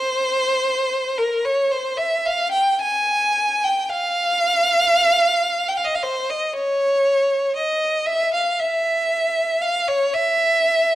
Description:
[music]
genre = classical, free, expressive piece for unaccompanied violin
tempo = 52-60 BPM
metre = 4/4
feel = rubato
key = F minor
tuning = A4 = 441 Hz
[part]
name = clear violin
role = solo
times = 0.0-10.9 s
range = Bb4 to Ab5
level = -17 LUFS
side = equal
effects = none
[sound]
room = moderate recital hall reverb, RT60 1.5 s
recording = dark, warm production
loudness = -17 LUFS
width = side -14 dB against mid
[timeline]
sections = 0.0-10.9 A section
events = none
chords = none

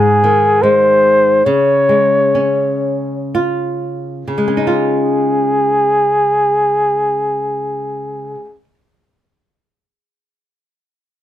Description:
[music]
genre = children's music, lullaby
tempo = 50-77 BPM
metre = 3/4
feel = rubato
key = Db major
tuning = A4 = 440 Hz
[part]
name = breathy flugelhorn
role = melody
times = 0.0-8.5 s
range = Ab4 to Db5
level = -13 LUFS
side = equal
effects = none
[part]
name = flamenco guitar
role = accompaniment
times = 0.0-8.7 s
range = Ab2 to F4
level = -18 LUFS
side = left 1 dB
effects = none
[sound]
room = light reverb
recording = close, detailed microphones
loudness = -12 LUFS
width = side -12 dB against mid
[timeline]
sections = 0.0-4.5 A section; 4.5-8.0 B section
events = slowing down 0.0-4.5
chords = 0.0 Ab; 1.5 Db; 4.5 Dbadd9

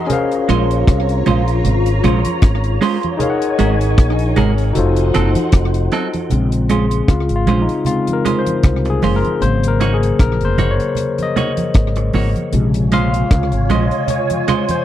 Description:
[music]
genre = lovers rock reggae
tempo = 77 BPM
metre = 4/4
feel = swing 55% on 16ths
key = Bb minor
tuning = A4 = 441 Hz
[part]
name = soft string machine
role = second line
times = 0.0-6.3, 12.5-14.8 s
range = Eb4 to Bb5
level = -23 LUFS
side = equal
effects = phaser, ensemble chorus
[part]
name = barky tine electric piano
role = accompaniment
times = 0.0-14.8 s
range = C3 to Bb5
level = -19 LUFS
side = left 4 dB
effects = none
[part]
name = deep reggae drum kit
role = drums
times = 0.1-14.8 s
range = hi-hat, kick drum, rim click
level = -16 LUFS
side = equal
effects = none
[part]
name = congas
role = percussion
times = 0.1-14.8 s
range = none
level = -24 LUFS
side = right 3 dB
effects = none
[part]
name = clean electric guitar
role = stabs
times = 0.5-14.6 s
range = Gb3 to Db5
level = -20 LUFS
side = right 6 dB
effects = spring reverb
[part]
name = mellow fretless electric bass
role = bass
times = 0.5-13.9 s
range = F1 to Db2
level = -16 LUFS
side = equal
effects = ensemble chorus
[sound]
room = little or no reverb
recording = dry, close 1970s-style studio recording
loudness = -13 LUFS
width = side -12 dB against mid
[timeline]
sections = 0.0-6.3 A section; 6.3-14.8 B section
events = tine electric piano solo 6.3-14.8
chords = 0.1 Bbm9; 3.2 Ab9sus4; 4.8 F7b9; 6.3 Bbm9; 9.4 Ab9sus4; 12.5 Bbm9

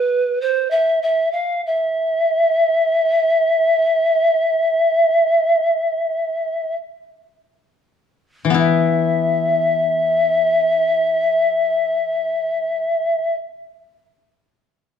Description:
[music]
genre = japanese traditional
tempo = free time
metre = none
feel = none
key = unclear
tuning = A4 = 439 Hz
[part]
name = mellow hollow pan flute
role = melody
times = 0.0-13.3 s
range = B4 to F5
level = -16 LUFS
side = equal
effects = none
[part]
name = koto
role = accompaniment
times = 8.4-13.3 s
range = E3 to E4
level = -20 LUFS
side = left 6 dB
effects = none
[sound]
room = light reverb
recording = dark, warm production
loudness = -16 LUFS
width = side -8 dB against mid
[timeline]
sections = 0.0-8.6 A section; 8.6-15.0 B section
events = slowing down 0.0-8.6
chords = none

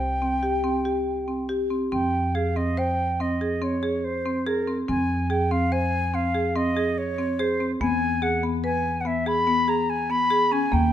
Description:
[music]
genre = contemporary instrumental, chamber music in an uneven meter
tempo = 144 BPM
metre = 7/4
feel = straight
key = unclear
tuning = A4 = 441 Hz
[part]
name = silver concert flute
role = melody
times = 0.0-10.9 s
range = Bb4 to B5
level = -26 LUFS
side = equal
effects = none
[part]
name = marimba with medium hard mallets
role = arpeggios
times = 0.0-10.9 s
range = Bb3 to C5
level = -25 LUFS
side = equal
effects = none
[part]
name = upright bass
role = bass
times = 0.0-10.9 s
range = C2 to F2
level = -30 LUFS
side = equal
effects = none
[sound]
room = moderate recital hall reverb, RT60 1.5 s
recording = none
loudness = -22 LUFS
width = side -10 dB against mid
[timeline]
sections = 0.0-10.9 A section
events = none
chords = 0.0 C5; 1.9 Fm; 7.8 E

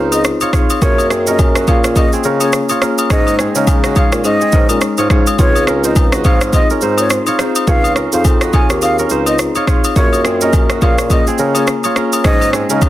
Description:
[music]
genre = afrobeats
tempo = 105 BPM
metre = 4/4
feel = swing 58% on 16ths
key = Db major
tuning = A4 = 440 Hz
[part]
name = kora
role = riff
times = 0.0-12.9 s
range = C4 to Eb5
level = -21 LUFS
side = right 6 dB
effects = digital delay
[part]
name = dark bassoon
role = bass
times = 0.0-12.9 s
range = Db2 to Db3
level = -17 LUFS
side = equal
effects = none
[part]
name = breathy mellow concert flute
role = melody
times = 0.1-12.8 s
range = Db5 to Ab5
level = -20 LUFS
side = right 1 dB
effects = digital delay
[part]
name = marimba with medium mallets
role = accompaniment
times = 0.1-12.9 s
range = Ab3 to Ab4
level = -19 LUFS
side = left 4 dB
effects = none
[part]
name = afro-pop drum kit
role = drums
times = 0.1-12.9 s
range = kick drum, rim click, shaker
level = -14 LUFS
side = equal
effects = none
[part]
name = agogo bells and woodblock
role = percussion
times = 0.1-12.9 s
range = none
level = -22 LUFS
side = left 7 dB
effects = none
[sound]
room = small room ambience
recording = dense, heavily limited modern master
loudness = -11 LUFS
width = side -14 dB against mid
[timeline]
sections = 0.0-12.9 A section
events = none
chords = 0.0 Dbmaj7; 0.8 Gbmaj7; 3.1 Absus4; 5.4 Dbmaj7; 10.0 Gbmaj7; 12.2 Absus4

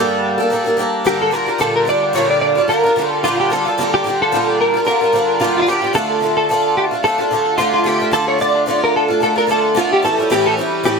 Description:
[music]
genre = acoustic pop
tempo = 110 BPM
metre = 4/4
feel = swing 55% on 16ths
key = D harmonic minor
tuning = A4 = 438 Hz
[part]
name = picked twelve-string acoustic guitar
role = accompaniment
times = 0.0-11.0 s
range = G2 to A4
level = -17 LUFS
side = right 1 dB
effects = double-tracked left and right
[part]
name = direct-recorded clean electric guitar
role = melody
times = 1.1-11.0 s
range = E4 to D5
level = -15 LUFS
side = equal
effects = ensemble chorus, digital delay
[sound]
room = light reverb, studio ambience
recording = none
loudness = -13 LUFS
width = side -4 dB against mid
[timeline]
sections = 0.0-11.0 A section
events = none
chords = 0.0 Gmadd9; 1.3 Bb6; 5.9 Dm; 10.0 A7

